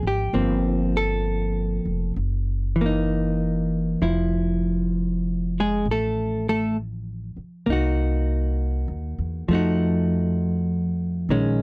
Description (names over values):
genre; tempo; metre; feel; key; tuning
jazz ballad; 66 BPM; 4/4; swing 67% on 8ths; unclear; A4 = 440 Hz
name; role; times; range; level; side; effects
hollow-body jazz guitar; accompaniment; 0.0-11.6 s; Eb3 to A4; -23 LUFS; equal; none
upright bass; bass; 0.0-11.6 s; F1 to F2; -25 LUFS; equal; none
room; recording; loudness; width
little or no reverb; dry, close 1970s-style studio recording; -21 LUFS; side -29 dB against mid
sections
0.0-11.6 A section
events
none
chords
0.3 Gm11; 2.2 Gb6; 4.0 Fmaj7; 7.7 Cm7b5; 9.5 F7b9